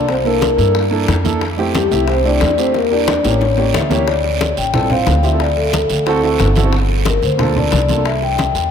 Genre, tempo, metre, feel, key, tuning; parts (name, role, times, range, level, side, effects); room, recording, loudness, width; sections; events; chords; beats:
Afro-Cuban jazz; 181 BPM; 4/4; straight; F major, D minor from 4.1 s; A4 = 440 Hz
vibraphone with soft mallets; melody; 0.0-8.7 s; G4 to G5; -18 LUFS; left 4 dB
breathy trombone; second line; 0.0-3.7 s; G3 to E4; -25 LUFS; right 4 dB
warm concert grand piano; accompaniment; 0.0-8.1 s; A3 to C5; -20 LUFS; right 4 dB
upright bass; bass; 0.0-8.7 s; G1 to G2; -18 LUFS; equal
bongos; percussion; 0.1-8.7 s; -25 LUFS; left 8 dB
congas; percussion; 0.1-8.7 s; -23 LUFS; left 1 dB
guiro; percussion; 0.1-8.7 s; -28 LUFS; right 10 dB
moderate cathedral reverb, RT60 5.1 s; in a vast, echoing space; -13 LUFS; side -7 dB against mid
0.0-4.1 A section; 4.1-8.7 B section
drum fill 2.7-4.1
0.1 C13; 1.4 Fmaj9; 2.7 Em7b5; 3.4 A7b9; 4.1 Dm7; 5.4 D7; 6.7 Gm7; 8.1 C
| 0.09 0.42 0.75 1.08 | 1.42 1.75 2.08 2.41 | 2.75 3.08 3.41 3.74 | 4.08 4.41 4.74 5.07 | 5.40 5.73 6.07 6.40 | 6.73 7.06 7.39 7.72 | 8.05 8.38